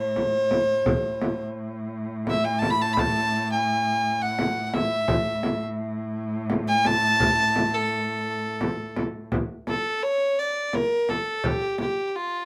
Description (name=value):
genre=Arabic maqam ensemble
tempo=85 BPM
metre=3/4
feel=straight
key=A maqam hijaz from 9.3 s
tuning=A4 = 440 Hz
part: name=warm fiddle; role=melody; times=0.0-12.4 s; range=F4 to B5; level=-26 LUFS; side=equal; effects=none
part: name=rich cello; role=drone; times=0.0-9.4 s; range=A2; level=-33 LUFS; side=equal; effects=none
part: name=frame drum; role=percussion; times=0.2-11.9 s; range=none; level=-29 LUFS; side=equal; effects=none
room=moderate small room reverb, RT60 0.5 s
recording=band playing live in one room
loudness=-25 LUFS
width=mono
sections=0.0-9.3 A section; 9.3-12.4 B section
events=none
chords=none